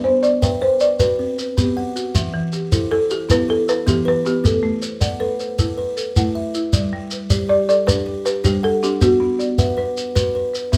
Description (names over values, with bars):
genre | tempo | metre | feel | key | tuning
southern african traditional, mbira-style interlocking cycle | 105 BPM (dotted quarters) | 12/8 | straight | G major | A4 = 441 Hz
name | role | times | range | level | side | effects
folk marimba with medium mallets | melody | 0.0-9.7 s | F#4 to D5 | -20 LUFS | equal | none
buzzing kalimba | arpeggios | 0.0-10.8 s | E3 to G5 | -26 LUFS | equal | none
buzzing marimba with medium hard mallets | arpeggios | 0.0-10.8 s | E3 to F#5 | -28 LUFS | equal | none
shekere | percussion | 0.2-10.8 s | none | -23 LUFS | equal | none
room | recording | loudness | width
moderate large studio reverb, RT60 0.9 s | band playing live in one room | -19 LUFS | mono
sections
0.0-6.7 A section; 6.7-10.8 B section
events
none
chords
0.0 Bm; 2.1 Em; 4.4 Am; 6.7 G; 9.0 Bm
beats
0.42 1.00 1.57 | 2.15 2.72 3.29 3.87 | 4.44 5.01 5.58 6.16 | 6.73 7.30 7.87 8.44 | 9.02 9.59 10.16 10.73